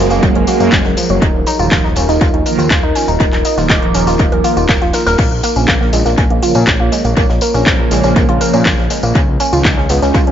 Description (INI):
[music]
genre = melodic techno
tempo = 121 BPM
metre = 4/4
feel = straight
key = Bb minor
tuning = A4 = 440 Hz
[part]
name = deep dark ambient pad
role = sustained chords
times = 0.0-10.3 s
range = Bb3 to F5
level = -22 LUFS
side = left 1 dB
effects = chorus, built-in reverb, sidechain pumping
[part]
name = woody wave-folded pluck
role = arpeggios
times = 0.0-10.3 s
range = F3 to Eb6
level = -17 LUFS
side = right 1 dB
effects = chorus, phaser, cassette tape, sidechain pumping, tape echo
[part]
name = brassy analog pad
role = stabs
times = 0.0-9.7 s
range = Db3 to Db4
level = -19 LUFS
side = right 3 dB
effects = chorus, phaser, sidechain pumping, analog delay
[part]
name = fat analog bass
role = bass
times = 0.0-10.3 s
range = Eb1 to Bb2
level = -17 LUFS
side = equal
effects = sidechain pumping
[part]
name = crisp fusion drum kit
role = drums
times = 0.1-10.3 s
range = hi-hat, snare drum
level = -30 LUFS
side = right 2 dB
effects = none
[part]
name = house drum kit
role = drums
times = 0.1-10.3 s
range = crash cymbal, handclaps, hi-hat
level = -19 LUFS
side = left 1 dB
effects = overdrive, analog delay
[part]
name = tambourine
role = percussion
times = 0.1-10.2 s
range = none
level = -25 LUFS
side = left 4 dB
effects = analog delay
[part]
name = electronic kick drum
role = drums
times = 0.2-10.2 s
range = none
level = -15 LUFS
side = equal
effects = overdrive
[sound]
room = light reverb, digital ambience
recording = echo-heavy mix, nothing above 7.5 kHz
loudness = -10 LUFS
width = side -9 dB against mid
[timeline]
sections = 0.0-10.3 A section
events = none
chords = 0.0 Gbadd9; 1.2 Ebsus2; 5.2 Bbm; 9.2 Dbadd9